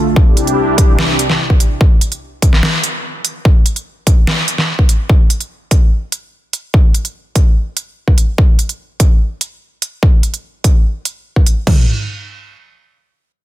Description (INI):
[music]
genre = heavy wobble dubstep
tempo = 146 BPM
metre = 4/4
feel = half-time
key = unclear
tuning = A4 = 440 Hz
[part]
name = lush unison pad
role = sustained chords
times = 0.0-1.8 s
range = C2 to A4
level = -16 LUFS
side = equal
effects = chorus, phaser, sidechain pumping
[part]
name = dubstep drum kit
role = drums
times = 0.2-11.8 s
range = crash cymbal, kick drum, toms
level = -10 LUFS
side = equal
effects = none
[part]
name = dubstep drum kit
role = drums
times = 0.4-11.5 s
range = hi-hat, snare drum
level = -17 LUFS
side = right 1 dB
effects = none
[sound]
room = little or no reverb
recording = dense, heavily limited modern master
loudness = -11 LUFS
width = side -15 dB against mid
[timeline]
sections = 0.0-11.7 A section; 11.7-13.4 B section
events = none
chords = 0.2 Cadd9; 1.8 N.C.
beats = | 0.16 0.57 0.98 1.40 | 1.81 2.22 2.63 3.04 | 3.45 3.86 4.27 4.68 | 5.09 5.51 5.92 6.33 | 6.74 7.15 7.56 7.97 | 8.38 8.79 9.21 9.62 | 10.03 10.44 10.85 11.26 | 11.67